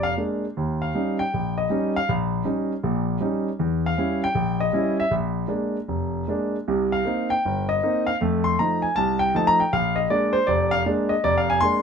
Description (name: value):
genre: solo jazz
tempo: 157 BPM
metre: 4/4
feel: swing 64% on 8ths, rubato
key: Bb mixolydian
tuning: A4 = 440 Hz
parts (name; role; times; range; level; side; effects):
- warm concert grand piano; solo; 0.0-11.8 s; F1 to C6; -20 LUFS; equal; none
room: light reverb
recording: minimal, uncompressed stereo recording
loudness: -21 LUFS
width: side -6 dB against mid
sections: 0.0-11.8 A section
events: grand piano solo 0.0-11.8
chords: 0.0 Bb7; 0.6 Eb7; 3.6 Edim7; 5.1 Bb7; 6.7 Cm7; 8.2 F7; 9.7 Bb7